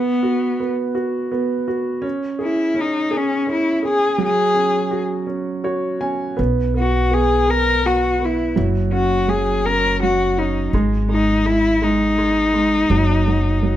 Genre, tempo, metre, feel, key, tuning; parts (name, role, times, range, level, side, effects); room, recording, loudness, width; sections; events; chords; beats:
acoustic folk-pop ballad; 55 BPM (dotted quarters); 6/8; straight; B major; A4 = 440 Hz
warm cello; melody; 0.0-13.8 s; B3 to A#4; -18 LUFS; left 2 dB
clear grand piano; accompaniment; 0.0-13.8 s; F#3 to G#5; -22 LUFS; right 3 dB
upright bass; bass; 6.4-13.8 s; F#1 to B1; -21 LUFS; equal
light reverb; -16 LUFS; side -12 dB against mid
0.0-13.8 A section
0.0 B5; 2.0 C#5; 4.2 F#sus2; 6.4 B5; 8.6 F#5; 10.7 G#5; 12.9 D#m/F#
0.97 | 2.05 3.13 | 4.21 5.30 | 6.38 7.47 | 8.56 9.65 | 10.73 11.81 | 12.90